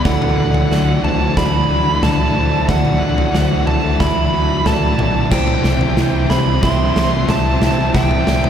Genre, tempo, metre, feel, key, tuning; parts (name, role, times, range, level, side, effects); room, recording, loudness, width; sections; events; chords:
post-rock; 91 BPM; 4/4; straight; A4 = 440 Hz
bright studio string section; sustained chords; 0.0-8.5 s; E3 to D5; -29 LUFS; right 2 dB
twelve-string electric guitar; arpeggios; 0.0-8.5 s; C3 to E4; -24 LUFS; right 1 dB; wide subtle chorus, tape echo
vibraphone with soft mallets; arpeggios; 0.0-8.5 s; A4 to E5; -25 LUFS; right 7 dB; tape echo
sludgy distorted guitar; riff; 0.0-8.5 s; C3 to E3; -20 LUFS; left 5 dB; overdrive
smooth overdriven lead guitar; melody; 0.1-8.5 s; F#5 to C6; -20 LUFS; right 3 dB; tape echo
growling fingered electric bass; bass; 0.1-8.5 s; B1 to D2; -20 LUFS; equal; overdrive
big rock drum kit; drums; 0.1-8.5 s; crash cymbal, kick drum, snare drum, toms; -19 LUFS; equal
moderate lush hall reverb, RT60 2.8 s; dreamy mix soaked in reverb; -13 LUFS; side -8 dB against mid
0.0-8.5 A section
build-up 0.0-8.5; drum fill 0.0-8.5
0.1 Dadd9; 5.3 C